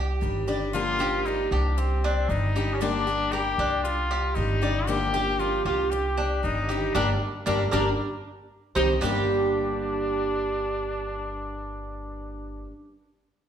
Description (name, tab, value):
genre	latin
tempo	116 BPM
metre	4/4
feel	straight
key	G minor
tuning	A4 = 441 Hz
part	Cuban tres	arpeggios	0.0-12.6 s	G3 to D5	-28 LUFS	right 3 dB	none
part	upright bass	bass	0.0-12.6 s	G1 to C2	-29 LUFS	equal	none
part	picked steel-string acoustic guitar	accompaniment	0.2-12.7 s	G2 to G4	-32 LUFS	left 4 dB	none
part	warm trumpet	second line	0.7-12.7 s	C4 to G4	-29 LUFS	left 3 dB	none
room	wet recital hall reverb, RT60 1.3 s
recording	recorded in a church or concert hall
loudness	-23 LUFS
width	side -9 dB against mid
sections	0.7-9.0 A section; 9.0-13.1 B section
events	band accent 6.9-9.0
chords	0.0 Cmadd9; 0.7 Gm7; 1.8 Cmadd9; 2.8 Gm; 3.8 Cmadd9; 4.9 Gm7; 5.9 Cmadd9; 6.9 Gm; 8.0 Cm; 9.0 Gm